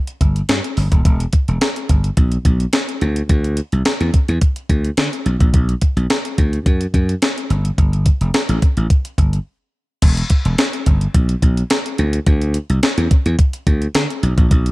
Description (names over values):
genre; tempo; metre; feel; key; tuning
early-eighties boogie funk; 107 BPM; 4/4; straight; E minor; A4 = 440 Hz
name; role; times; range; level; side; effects
clean 12-bit digital drum machine; drums; 0.1-14.7 s; crash cymbal, hi-hat, kick drum, snare drum; -15 LUFS; equal; gated reverb
slap bass; bass; 0.2-14.7 s; D#1 to D3; -17 LUFS; equal; none
room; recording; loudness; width
little or no reverb; none; -14 LUFS; side -20 dB against mid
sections
0.0-10.0 A section; 10.0-14.7 B section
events
break 9.5-10.0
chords
none